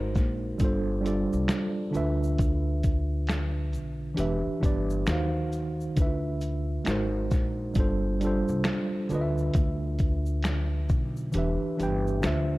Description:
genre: lo-fi hip hop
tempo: 67 BPM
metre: 4/4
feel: swing 62% on 16ths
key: D dorian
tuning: A4 = 440 Hz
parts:
  - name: tine electric piano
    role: accompaniment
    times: 0.0-12.6 s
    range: D3 to G5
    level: -28 LUFS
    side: right 1 dB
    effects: medium stereo tremolo, cassette tape, low-pass filter
  - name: upright bass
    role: bass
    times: 0.0-12.6 s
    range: E1 to Eb2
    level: -30 LUFS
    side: equal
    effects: none
  - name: lo-fi sampler-style drum kit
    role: drums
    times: 0.1-12.5 s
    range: finger snaps, hi-hat, kick drum, shaker, snare drum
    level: -28 LUFS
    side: equal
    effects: vintage 12-bit sampler grit
  - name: tube shaker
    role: percussion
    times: 0.2-12.5 s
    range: none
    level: -56 LUFS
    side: left 6 dB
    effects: none
room: light reverb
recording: dark, warm production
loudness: -25 LUFS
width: side -19 dB against mid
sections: 0.0-12.6 A section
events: kick muted 11.3-12.6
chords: 0.0 G#9; 0.6 G9sus4; 1.9 Dm69; 4.2 Em7; 5.1 Ebm69; 6.0 Dm69; 6.9 G#9; 7.8 G9sus4; 9.1 Dm69; 11.3 Em7

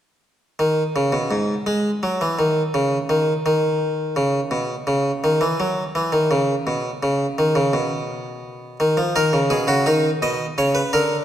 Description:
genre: classical, baroque-style two-part invention for harpsichord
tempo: 56 BPM (dotted quarters)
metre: 12/8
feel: straight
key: unclear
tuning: A4 = 440 Hz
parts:
  - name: harpsichord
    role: solo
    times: 0.6-11.2 s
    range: G#2 to D#5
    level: -18 LUFS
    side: equal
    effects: none
room: wet concert hall reverb, RT60 2.2 s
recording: none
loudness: -18 LUFS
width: side -11 dB against mid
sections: 0.2-11.2 A section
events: none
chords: none

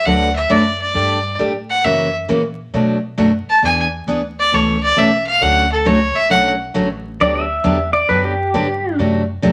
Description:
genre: country, western swing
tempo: 134 BPM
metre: 4/4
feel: swing 67% on 8ths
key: unclear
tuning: A4 = 441 Hz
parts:
  - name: clear fiddle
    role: melody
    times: 0.0-6.5 s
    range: A4 to A5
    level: -17 LUFS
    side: equal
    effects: none
  - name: picked steel-string acoustic guitar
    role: accompaniment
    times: 0.1-9.5 s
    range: B2 to B4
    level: -20 LUFS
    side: equal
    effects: none
  - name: upright bass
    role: bass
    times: 0.1-9.5 s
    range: A1 to B2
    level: -28 LUFS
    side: equal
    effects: none
  - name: pedal steel guitar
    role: second line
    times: 7.2-9.0 s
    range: G4 to E5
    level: -19 LUFS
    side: equal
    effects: none
room: moderate studio reverb, RT60 0.8 s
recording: vinyl crackle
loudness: -16 LUFS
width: mono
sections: 0.0-7.2 A section; 7.2-9.5 A section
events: fiddle solo 0.0-7.2; pedal steel guitar solo 7.2-9.5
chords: 0.1 D6; 1.0 Gsus2; 1.8 F#7; 2.7 Bm7; 3.6 E7; 4.5 Aadd9; 5.4 Dmaj7; 7.2 Gmaj7; 9.0 D7

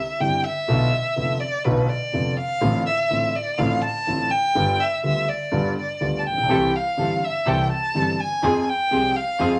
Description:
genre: tango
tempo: 124 BPM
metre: 4/4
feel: rubato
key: C major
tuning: A4 = 442 Hz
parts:
  - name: warm violin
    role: second line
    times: 0.0-9.6 s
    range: B4 to A5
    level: -25 LUFS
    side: equal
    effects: none
  - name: warm concert grand piano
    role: accompaniment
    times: 0.2-9.6 s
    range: F1 to Ab4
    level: -26 LUFS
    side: equal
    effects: none
  - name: rich double bass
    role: bass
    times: 0.2-9.6 s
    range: F1 to F2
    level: -32 LUFS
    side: equal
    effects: none
  - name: muted symphonic string section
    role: stabs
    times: 6.5-9.6 s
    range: C4 to A4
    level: -30 LUFS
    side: equal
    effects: none
room: wet studio reverb, RT60 0.5 s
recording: none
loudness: -22 LUFS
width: mono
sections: 0.0-9.6 A section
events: violin solo 0.0-9.6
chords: 0.0 Cadd9; 0.7 Bm7b5; 2.6 Dm7/A; 4.6 G7; 6.5 C6; 8.4 Fm

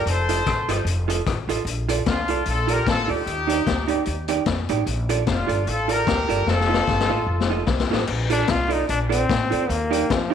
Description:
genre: ska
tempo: 150 BPM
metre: 4/4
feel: swing 56% on 8ths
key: Bb major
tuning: A4 = 436 Hz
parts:
  - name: clear horn section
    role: melody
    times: 0.0-7.7 s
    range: D4 to C5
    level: -24 LUFS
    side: left 2 dB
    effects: none
  - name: vintage hollow-body jazz guitar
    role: accompaniment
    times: 0.0-10.3 s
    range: Eb4 to Eb5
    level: -26 LUFS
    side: right 9 dB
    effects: slapback echo
  - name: upright bass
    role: bass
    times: 0.0-10.3 s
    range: F1 to F2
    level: -26 LUFS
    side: equal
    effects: none
  - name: raw garage drum kit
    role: drums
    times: 0.1-10.2 s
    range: crash cymbal, hi-hat, kick drum, rim click, snare drum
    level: -25 LUFS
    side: left 5 dB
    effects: slapback echo
  - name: brilliant trombone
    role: melody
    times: 8.3-10.3 s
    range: F3 to F4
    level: -23 LUFS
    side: left 3 dB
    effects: slapback echo
room: moderate echo chamber reverb, RT60 1.6 s, small room ambience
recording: 1960s-style stereo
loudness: -19 LUFS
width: side -8 dB against mid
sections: 0.0-8.1 A section; 8.1-10.3 B section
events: drum fill 6.5-8.1; trombone solo 8.1-10.3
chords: 0.1 F7; 1.7 Bbmaj7; 3.3 Ebmaj7; 4.9 Bbmaj7; 6.5 F7; 8.1 Bbmaj7; 9.7 Ebmaj7

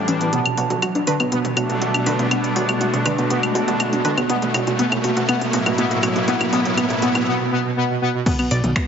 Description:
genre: melodic techno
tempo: 121 BPM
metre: 4/4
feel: straight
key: B minor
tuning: A4 = 440 Hz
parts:
  - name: evolving wavetable pad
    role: sustained chords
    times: 0.0-8.9 s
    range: B3 to A5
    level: -29 LUFS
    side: right 1 dB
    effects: phaser, built-in reverb, sidechain pumping
  - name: brassy analog pad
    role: stabs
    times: 0.0-7.3 s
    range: A2 to E4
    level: -25 LUFS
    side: left 2 dB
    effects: chorus, sidechain pumping, ping-pong delay
  - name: riser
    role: sound effects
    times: 0.1-7.3 s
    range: none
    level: -26 LUFS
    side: right 2 dB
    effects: none
  - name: analog synth brass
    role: melody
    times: 0.1-8.7 s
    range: B2 to D4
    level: -23 LUFS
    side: right 1 dB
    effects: chorus, sidechain pumping, ping-pong delay
  - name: warbly dusty pluck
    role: arpeggios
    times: 0.1-8.9 s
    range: B3 to D5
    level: -25 LUFS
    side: equal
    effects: chorus, sidechain pumping, ping-pong delay
  - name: plucky analog bass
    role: bass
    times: 0.1-8.7 s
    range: E1 to B1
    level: -28 LUFS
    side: equal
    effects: sidechain pumping, high-pass filter
  - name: techno drum kit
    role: drums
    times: 0.1-8.9 s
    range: claves, crash cymbal, finger snaps, hi-hat, toms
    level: -24 LUFS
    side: left 1 dB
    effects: high-pass filter on hats, high-pass filter on toms, high-pass filter on perc, high-pass filter on cymbals, high-pass filter on snare
  - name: dark detuned synth bell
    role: second line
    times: 1.1-4.1 s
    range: D4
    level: -31 LUFS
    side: left 1 dB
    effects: none
  - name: electronic kick drum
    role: drums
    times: 8.3-8.9 s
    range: none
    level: -21 LUFS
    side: equal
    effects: none
room: wet lush hall reverb, RT60 2.3 s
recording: heavily compressed radio sound, nothing above 7.6 kHz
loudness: -17 LUFS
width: side -7 dB against mid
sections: 0.0-8.3 A section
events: build-up 0.0-8.3; drum fill 0.0-7.3; filter sweep on analog polysynth 0.0-8.3; filter sweep on ambient pad 0.0-8.3; riser 0.1-7.3; break 7.3-8.3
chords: 0.3 Bm7; 4.3 F#m7; 8.3 Bm7

